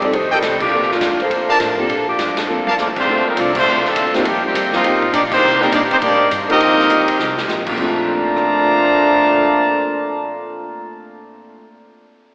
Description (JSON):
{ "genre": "jazz, big band swing", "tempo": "204 BPM", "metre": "4/4", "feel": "swing 63% on 8ths", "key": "Bb major", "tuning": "A4 = 440 Hz", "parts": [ { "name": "dark saxophone section", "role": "melody", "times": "0.0-3.0 s", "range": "F3 to D5", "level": "-19 LUFS", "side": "equal", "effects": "none" }, { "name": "vintage hollow-body jazz guitar", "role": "accompaniment", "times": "0.0-11.6 s", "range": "F2 to G4", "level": "-28 LUFS", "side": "equal", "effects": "none" }, { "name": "warm baby grand piano", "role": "accompaniment", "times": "0.0-11.6 s", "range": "Bb2 to A4", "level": "-25 LUFS", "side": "equal", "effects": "none" }, { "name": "upright bass", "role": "bass", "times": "0.0-11.6 s", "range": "G1 to C3", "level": "-34 LUFS", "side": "equal", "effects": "none" }, { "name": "swinging big-band drum kit", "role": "drums", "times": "0.0-8.4 s", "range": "crash cymbal, hi-hat, kick drum, ride cymbal, rim click, snare drum, toms", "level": "-22 LUFS", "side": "equal", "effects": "none" }, { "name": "bright trumpet section", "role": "stabs", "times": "0.3-2.7 s", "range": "A4 to A5", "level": "-22 LUFS", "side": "equal", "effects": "none" }, { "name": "clear trombone section", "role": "second line", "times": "2.4-10.9 s", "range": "A2 to A4", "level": "-20 LUFS", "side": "equal", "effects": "none" }, { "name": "clear trumpet section", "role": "melody", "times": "2.8-10.9 s", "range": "G3 to Bb5", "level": "-15 LUFS", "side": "equal", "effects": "none" } ], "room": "wet church reverb, RT60 3.6 s", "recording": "recorded in a church or concert hall, AM radio sound", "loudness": "-13 LUFS", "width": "side -36 dB against mid", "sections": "0.0-3.1 A section; 3.1-7.8 B section; 7.8-10.1 C section", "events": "band accent 0.6, 2.3, 3.5, 5.3; drum fill 2.5, 7.2", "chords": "0.0 F13; 0.7 Bbmaj7; 3.1 Dm7; 4.2 F9sus4; 5.4 Cm9; 6.6 F9sus4; 7.8 Bbmaj7" }